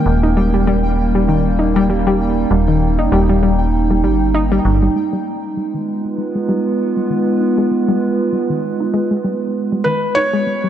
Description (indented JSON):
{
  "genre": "IDM",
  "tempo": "98 BPM",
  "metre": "4/4",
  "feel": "swing 56% on 16ths",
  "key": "Ab melodic minor",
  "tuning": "A4 = 440 Hz",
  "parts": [
    { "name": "warbly tape-like pad", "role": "sustained chords", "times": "0.0-10.7 s", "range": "G3 to Cb5", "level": "-18 LUFS", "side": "right 2 dB", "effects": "chorus, built-in reverb" },
    { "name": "warbly dusty pluck", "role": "arpeggios", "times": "0.0-10.7 s", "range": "G2 to Eb4", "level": "-19 LUFS", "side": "left 2 dB", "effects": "chorus, tape echo" },
    { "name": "pulsing gated texture", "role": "texture", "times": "0.0-5.0 s", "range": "G5", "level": "-29 LUFS", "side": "left 2 dB", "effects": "chorus, built-in reverb" },
    { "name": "metallic FM bass", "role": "bass", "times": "0.1-4.9 s", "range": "Eb1 to G1", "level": "-17 LUFS", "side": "equal", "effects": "none" },
    { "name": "felt-muted upright piano", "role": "melody", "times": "9.8-10.7 s", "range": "Cb5 to Db5", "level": "-16 LUFS", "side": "equal", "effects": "none" }
  ],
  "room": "moderate lush hall reverb, RT60 3.3 s",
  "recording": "dry, gritty hardware recording, cassette tape",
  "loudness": "-14 LUFS",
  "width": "side -10 dB against mid",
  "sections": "0.0-5.0 A section; 5.0-10.7 B section",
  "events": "none",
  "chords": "0.1 Eb7; 5.0 Abm6"
}